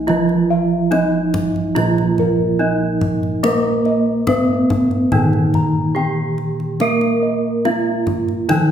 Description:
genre	Javanese gamelan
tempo	71 BPM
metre	4/4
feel	straight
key	Bb pelog barang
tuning	A4 = 439 Hz
part	gamelan-type bronze metallophone	melody	0.0-8.7 s	Bb3 to Bb4	-20 LUFS	right 1 dB	none
part	gamelan-type bronze metallophone	accompaniment	0.0-8.7 s	Eb3+30c to Bb3	-20 LUFS	right 3 dB	none
part	gamelan-type bossed gongs	bass	0.0-8.7 s	Bb2 to Bb4	-24 LUFS	equal	none
part	gamelan-type bossed gongs	arpeggios	0.1-8.7 s	Bb4 to Bb5	-23 LUFS	left 2 dB	none
part	kendang	percussion	0.1-8.7 s	none	-24 LUFS	left 2 dB	none
room	wet recital hall reverb, RT60 1.6 s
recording	recorded in a church or concert hall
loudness	-15 LUFS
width	side -9 dB against mid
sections	0.0-8.7 A section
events	none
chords	none

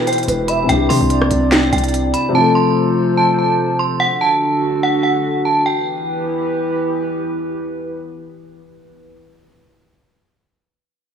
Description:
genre	hip hop, trap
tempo	145 BPM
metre	4/4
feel	half-time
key	E minor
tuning	A4 = 440 Hz
part	metallic FM bell	melody	0.0-6.9 s	F#5 to C6	-18 LUFS	right 2 dB	chorus, tremolo, low-pass filter, tape echo
part	warm velvety synth lead	second line	0.0-0.7 s	B4 to E5	-23 LUFS	right 2 dB	chorus, tape echo
part	felt-muted upright piano	accompaniment	0.0-4.0 s	B2 to A4	-18 LUFS	left 4 dB	low-pass filter
part	dark analog pad	sustained chords	0.0-9.1 s	C3 to D5	-20 LUFS	right 1 dB	lush chorus
part	trap drum kit	drums	0.1-2.2 s	handclaps, hi-hat, rim click, snare drum	-19 LUFS	right 1 dB	none
part	distorted 808-style bass	bass	0.3-2.1 s	E1 to C3	-19 LUFS	equal	distortion
room	light reverb, digital ambience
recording	small room ambience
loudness	-14 LUFS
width	side -7 dB against mid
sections	0.0-5.7 A section; 5.7-9.0 B section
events	none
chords	0.0 Em; 0.7 Cadd9; 2.3 F; 4.0 D; 5.7 Em

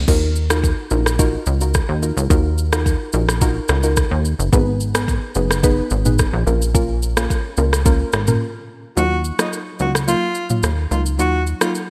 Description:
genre	afrobeats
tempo	108 BPM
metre	4/4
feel	straight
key	Eb minor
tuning	A4 = 439 Hz
part	plucky analog bass	bass	0.0-11.5 s	Gb1 to Eb2	-21 LUFS	equal	none
part	soft round pluck	accompaniment	0.1-11.9 s	Gb3 to Cb5	-25 LUFS	equal	chorus
part	afro-pop drum kit	drums	0.1-11.9 s	crash cymbal, kick drum, rim click, shaker, toms	-22 LUFS	equal	gated reverb
part	breathy alto saxophone	melody	9.0-11.7 s	Eb4 to Gb4	-25 LUFS	equal	none
room	light reverb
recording	bright 1980s-style digital production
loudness	-18 LUFS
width	mono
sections	0.1-9.0 A section; 9.0-11.9 B section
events	break 8.4-9.0; kick muted 9.0-11.9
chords	0.1 Ebmadd9; 4.5 Abm; 6.5 Bbm; 9.0 Ebmadd9

